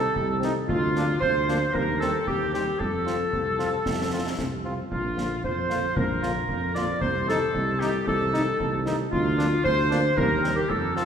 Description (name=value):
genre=military-style march for wind band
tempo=114 BPM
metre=2/4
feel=straight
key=Bb major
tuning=A4 = 440 Hz
part: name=warm woodwind section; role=second line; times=0.0-11.1 s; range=F4 to D5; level=-25 LUFS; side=equal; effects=none
part: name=mellow tuba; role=bass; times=0.0-11.1 s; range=Bb1 to F2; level=-28 LUFS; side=right 2 dB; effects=none
part: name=concert bass drum and concert snare drum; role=drums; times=0.2-11.1 s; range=none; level=-32 LUFS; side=equal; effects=none
part: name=clear cornet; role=melody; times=0.4-11.1 s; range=C4 to F4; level=-36 LUFS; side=right 1 dB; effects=none
part: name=mellow French horn section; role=accompaniment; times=0.4-11.1 s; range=C3 to Eb4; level=-35 LUFS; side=left 3 dB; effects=none
room=wet church reverb, RT60 3.0 s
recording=recorded in a church or concert hall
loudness=-22 LUFS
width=side -8 dB against mid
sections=0.0-11.1 A section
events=none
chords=0.0 Adim/C; 0.7 Bb/D; 1.7 Cm/Eb; 2.8 F; 4.9 Bb; 7.0 Adim/C; 9.1 Bb/D; 10.2 Cm7/Eb